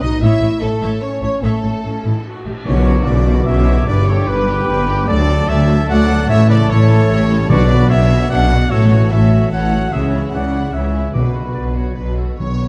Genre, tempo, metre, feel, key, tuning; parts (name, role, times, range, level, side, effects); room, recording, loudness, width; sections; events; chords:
cinematic, heroic adventure film score; 148 BPM; 3/4; straight; B minor; A4 = 440 Hz
rich studio violin section; melody; 0.0-12.7 s; C#4 to E5; -30 LUFS; equal
rich chamber violin section; second line; 0.0-12.7 s; F#4 to F#5; -32 LUFS; equal
rich symphonic viola section; accompaniment; 0.0-12.7 s; D3 to E5; -32 LUFS; equal
mellow French horn section; sustained chords; 0.0-12.2 s; C#3 to B4; -28 LUFS; equal
concert harp; arpeggios; 0.0-12.7 s; G2 to B5; -26 LUFS; equal
mellow trumpet; stabs; 0.0-12.7 s; A4 to F#5; -25 LUFS; equal
dark symphonic cello section; bass; 0.0-12.3 s; D2 to C#3; -22 LUFS; equal
rich symphonic double bass section; bass; 0.0-12.7 s; G1 to D2; -19 LUFS; equal
cymbal swell and tam-tam; percussion; 0.2-4.2 s; -30 LUFS; equal
clear clarinet; second line; 2.7-12.4 s; E4 to D5; -33 LUFS; equal
clear oboe; second line; 2.7-11.3 s; A5 to E6; -32 LUFS; equal
concert flute; second line; 2.7-12.7 s; F#4 to C#6; -30 LUFS; equal
warm trombone section; sustained chords; 2.7-12.7 s; D3 to G#4; -29 LUFS; equal
timpani; percussion; 7.5-8.1, 11.2-12.7 s; B2; -21 LUFS; equal
moderate scoring stage reverb, RT60 1.9 s; dark, warm production; -15 LUFS; mono
0.0-2.7 A section; 2.7-12.4 B section
band accent 2.7-3.1
0.2 A; 2.7 Bmadd9; 3.9 G; 5.1 D; 6.3 A; 7.5 Bmadd9; 8.7 F#m7/A; 9.9 C#m; 11.2 Bm